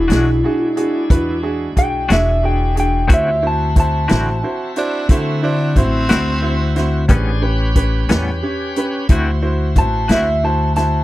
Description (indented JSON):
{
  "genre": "slow blues",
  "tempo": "60 BPM (dotted quarters)",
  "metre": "12/8",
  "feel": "straight",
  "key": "unclear",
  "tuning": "A4 = 440 Hz",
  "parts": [
    { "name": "electric slide guitar", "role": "melody", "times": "0.0-11.0 s", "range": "E4 to A5", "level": "-19 LUFS", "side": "equal", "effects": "none" },
    { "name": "clear grand piano", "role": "accompaniment", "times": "0.0-11.0 s", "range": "C#4 to C#5", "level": "-23 LUFS", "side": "right 2 dB", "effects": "none" },
    { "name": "bright tonewheel organ", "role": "sustained chords", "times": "0.0-11.0 s", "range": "G#3 to C5", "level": "-27 LUFS", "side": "equal", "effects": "overdrive, slow rotary speaker" },
    { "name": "upright bass", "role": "bass", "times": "0.0-11.0 s", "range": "E1 to D3", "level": "-18 LUFS", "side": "equal", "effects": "none" },
    { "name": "semi-hollow electric guitar", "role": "accompaniment", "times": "0.1-10.3 s", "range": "A2 to F#4", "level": "-21 LUFS", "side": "left 3 dB", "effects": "tremolo" },
    { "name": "swinging big-band drum kit", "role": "drums", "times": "0.1-10.9 s", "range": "hi-hat, kick drum, snare drum", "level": "-14 LUFS", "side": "equal", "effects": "none" },
    { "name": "growling tenor saxophone", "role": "second line", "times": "4.8-7.1 s", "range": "A3 to D4", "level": "-22 LUFS", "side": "right 2 dB", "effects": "none" }
  ],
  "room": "little or no reverb",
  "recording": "dry, close 1970s-style studio recording",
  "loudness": "-14 LUFS",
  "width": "side -16 dB against mid",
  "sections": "0.0-11.0 A section",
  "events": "none",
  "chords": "0.0 E9; 3.1 D9; 7.1 A9; 9.1 D9"
}